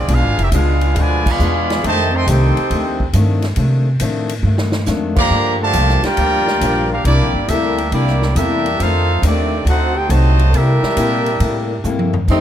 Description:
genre	jazz, big band swing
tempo	138 BPM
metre	4/4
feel	swing 68% on 8ths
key	F major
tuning	A4 = 440 Hz
part	clear trumpet section	melody	0.0-11.9 s	Bb3 to C6	-19 LUFS	equal	none
part	bright trombone section	second line	0.0-11.8 s	C3 to Bb4	-22 LUFS	right 2 dB	none
part	upright bass	bass	0.0-12.4 s	F1 to C3	-16 LUFS	equal	none
part	picked steel-string acoustic guitar	accompaniment	0.1-12.4 s	F2 to A4	-22 LUFS	left 5 dB	none
part	swinging big-band drum kit	drums	0.1-12.4 s	crash cymbal, hi-hat, kick drum, ride cymbal, snare drum, toms	-24 LUFS	equal	none
part	warm saxophone section	melody	12.3-12.4 s	G3 to Eb4	-14 LUFS	left 1 dB	none
room	light reverb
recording	close, detailed microphones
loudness	-13 LUFS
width	side -10 dB against mid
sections	0.0-12.3 A section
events	band accent 1.2, 5.1; drum fill 4.4-4.9, 11.8-12.3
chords	0.1 Bdim7; 1.8 F13; 5.3 Gm7; 7.0 C13; 8.8 F13; 9.7 D7b9; 10.5 C13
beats	| 0.09 0.53 0.96 1.39 | 1.83 2.26 2.70 3.13 | 3.57 4.00 4.44 4.87 | 5.31 5.74 6.18 6.61 | 7.05 7.48 7.92 8.35 | 8.79 9.22 9.66 10.10 | 10.53 10.97 11.40 11.84 | 12.28

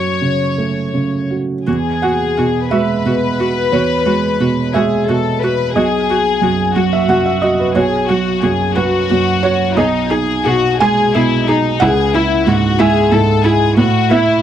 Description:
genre	neoclassical piano and strings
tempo	60 BPM (dotted quarters)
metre	6/8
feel	rubato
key	unclear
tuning	A4 = 440 Hz
part	rich studio violin section	melody	0.0-14.4 s	D#4 to C#5	-17 LUFS	left 6 dB	none
part	felt-muted upright piano	accompaniment	0.0-14.4 s	B1 to G#5	-15 LUFS	right 4 dB	none
part	rich viola	accompaniment	1.7-14.2 s	B3 to G#4	-20 LUFS	equal	none
room	light reverb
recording	dry, close 1970s-style studio recording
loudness	-12 LUFS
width	side -10 dB against mid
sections	0.0-1.7 A section; 1.7-14.4 A section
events	none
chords	0.0 F#m; 1.7 Eadd9; 5.8 B; 9.8 G#m/B; 11.8 C#m; 13.8 Asus2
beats	0.58 | 1.67 2.72 | 3.73 4.74 | 5.76 6.76 | 7.76 8.77 | 9.77 10.81 | 11.81 12.79 | 13.78

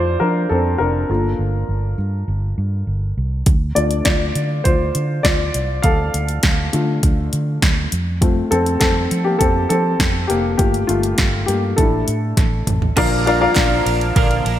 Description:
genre	piano-driven pop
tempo	101 BPM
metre	4/4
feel	straight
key	D minor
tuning	A4 = 441 Hz
part	warm upright piano	accompaniment	0.0-14.6 s	Bb2 to F5	-19 LUFS	left 2 dB	none
part	vintage muted fingered electric bass	bass	0.0-14.6 s	F1 to F3	-20 LUFS	equal	none
part	deep house drum kit	drums	3.5-14.6 s	crash cymbal, hi-hat, kick drum, ride cymbal, snare drum, toms	-18 LUFS	equal	none
part	direct-recorded clean electric guitar	riff	13.0-14.6 s	Bb2 to Bb4	-22 LUFS	right 5 dB	analog chorus, slapback echo
part	group handclap	percussion	13.6-13.7 s	none	barely audible	none	none
room	moderate concert hall reverb, RT60 2.4 s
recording	big arena sound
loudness	-15 LUFS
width	side -12 dB against mid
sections	0.0-13.0 A section; 13.0-14.6 B section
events	upright piano solo 0.0-13.0; drum fill 12.4-13.0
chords	0.0 F; 1.1 Gm7; 3.5 Dm; 7.9 F; 10.6 Gm7; 11.8 Asus4; 13.0 Bb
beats	0.50 | 1.09 1.69 2.28 2.88 | 3.47 4.06 4.66 5.25 | 5.84 6.44 7.03 7.63 | 8.22 8.81 9.41 10.00 | 10.59 11.19 11.78 12.38 | 12.97 13.56 14.15

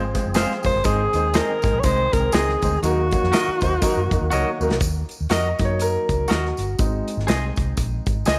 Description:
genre	uptempo 1960s-style soul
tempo	121 BPM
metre	4/4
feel	swing 58% on 8ths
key	Eb dorian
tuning	A4 = 440 Hz
part	percussive tonewheel organ	sustained chords	0.0-4.8 s	Eb3 to Ab4	-34 LUFS	equal	none
part	vintage muted fingered electric bass	bass	0.0-8.4 s	F1 to Gb2	-27 LUFS	equal	none
part	dark baby grand piano	accompaniment	0.1-8.4 s	Gb3 to Eb5	-28 LUFS	equal	none
part	natural country drum kit	drums	0.1-8.4 s	hi-hat, kick drum, snare drum	-26 LUFS	equal	none
part	tambourine	percussion	0.1-8.4 s	none	-39 LUFS	equal	none
part	twangy electric guitar	stabs	0.3-8.4 s	Gb4 to F5	-29 LUFS	equal	none
part	breathy alto saxophone	melody	0.7-4.6 s	Gb4 to Db5	-24 LUFS	equal	none
room	moderate echo chamber reverb, RT60 1.4 s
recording	none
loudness	-21 LUFS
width	mono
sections	0.0-4.8 A section; 4.8-8.4 B section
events	grand piano fill 4.1-4.8; drum fill 4.3-4.8; grand piano solo 4.8-8.4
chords	0.0 Fm; 0.9 Ab; 2.8 Ebm; 6.8 Ab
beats	0.36 | 0.85 1.35 1.84 2.34 | 2.83 3.33 3.82 4.32 | 4.81 5.30 5.80 6.29 | 6.79 7.28 7.78 8.27

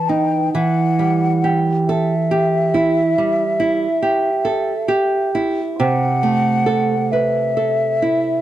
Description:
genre	romantic duo for flute and classical guitar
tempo	45 BPM (dotted quarters)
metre	12/8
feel	rubato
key	E minor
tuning	A4 = 440 Hz
part	mellow hollow concert flute	melody	0.0-8.4 s	E5 to A5	-20 LUFS	left 2 dB	none
part	nylon-string guitar	accompaniment	0.0-8.4 s	C3 to B4	-17 LUFS	right 3 dB	none
room	light reverb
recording	dark, warm production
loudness	-15 LUFS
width	side -12 dB against mid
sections	0.0-8.4 A section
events	none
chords	0.0 B/E; 0.5 Em; 5.8 Am/C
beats	| 0.54 1.87 3.18 4.47 | 5.79 7.12

